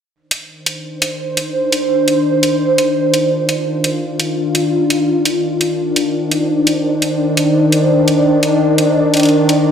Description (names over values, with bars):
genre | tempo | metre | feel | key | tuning
half-time drum and bass | 170 BPM | 4/4 | swing 54% on 16ths, half-time | C minor | A4 = 440 Hz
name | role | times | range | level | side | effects
bowed-like drone | sustained chords | 0.9-9.7 s | Eb3 to C5 | -13 LUFS | equal | built-in reverb, vintage 12-bit sampler grit
electronic hi-hat | drums | 0.3-9.6 s | none | -17 LUFS | equal | overdrive, studio reverb
room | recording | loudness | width
wet lush hall reverb, RT60 2.1 s | played on a big sound system in a bare room, stone room reverb | -13 LUFS | side -8 dB against mid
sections
0.1-9.7 A section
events
none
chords
0.1 Cmadd9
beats
| 0.14 0.49 0.84 1.20 | 1.55 1.90 2.25 2.61 | 2.96 3.31 3.67 4.02 | 4.37 4.73 5.08 5.43 | 5.79 6.14 6.49 6.84 | 7.20 7.55 7.90 8.26 | 8.61 8.96 9.31 9.67